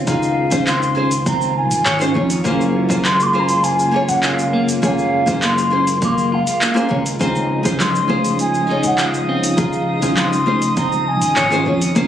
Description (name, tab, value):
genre	sunset chillout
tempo	101 BPM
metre	4/4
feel	straight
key	Db major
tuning	A4 = 439 Hz
part	nylon-string guitar	accompaniment	0.0-12.1 s	Bb3 to Db5	-21 LUFS	equal	auto-pan, digital delay
part	soft string machine	sustained chords	0.0-12.1 s	Db3 to F4	-26 LUFS	equal	ensemble chorus
part	fretless electric bass	bass	0.0-12.1 s	Gb1 to F2	-22 LUFS	equal	none
part	mellow hollow wooden flute	melody	0.1-11.7 s	F5 to D6	-20 LUFS	equal	digital delay
part	deep house drum kit	drums	0.1-12.1 s	handclaps, hi-hat, shaker	-22 LUFS	equal	overdrive
part	electronic kick drum	drums	0.1-12.1 s	none	-23 LUFS	equal	overdrive
part	clean electric guitar	arpeggios	0.7-12.1 s	Bb3 to Db5	-24 LUFS	right 1 dB	digital delay
part	drifting glass-harmonics texture	texture	7.6-12.1 s	Eb6	-28 LUFS	right 1 dB	chorus, built-in reverb
part	congas	percussion	7.8-10.6 s	none	-23 LUFS	left 2 dB	none
room	light reverb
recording	recorded on a phone in the room, club reverb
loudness	-14 LUFS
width	side -10 dB against mid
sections	0.0-12.1 A section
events	none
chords	0.0 Dbmaj9; 2.5 Gbmaj9#11; 7.2 Dbmaj9